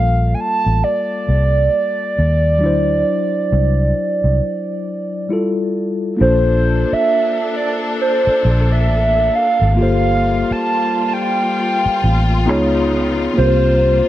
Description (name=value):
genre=R&B, neo-soul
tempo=67 BPM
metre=4/4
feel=swing 60% on 16ths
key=G dorian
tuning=A4 = 441 Hz
part: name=hollow clarinet-like synth lead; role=melody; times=0.0-14.1 s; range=C5 to A5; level=-18 LUFS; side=right 2 dB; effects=chorus, phaser, tape echo
part: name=mellow tine electric piano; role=accompaniment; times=0.0-14.1 s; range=F#3 to C#5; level=-20 LUFS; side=left 3 dB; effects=slow stereo tremolo
part: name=vintage muted fingered electric bass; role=bass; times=0.0-14.0 s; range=G1 to Eb2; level=-16 LUFS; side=equal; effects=none
part: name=warm studio string section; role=sustained chords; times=6.2-14.1 s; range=C3 to A4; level=-24 LUFS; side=left 2 dB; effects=none
room=light reverb, digital ambience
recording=none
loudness=-14 LUFS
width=side -13 dB against mid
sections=0.0-6.2 A section; 6.2-14.1 B section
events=break 4.4-6.2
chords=0.0 Gm9; 2.6 D9; 5.3 Fmaj9; 6.2 Bbmaj9; 9.8 Gm11; 12.5 C#9; 13.4 C7sus4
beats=0.83 1.72 | 2.62 3.51 4.41 5.30 | 6.20 7.09 7.99 8.89 | 9.78 10.68 11.57 12.47 | 13.36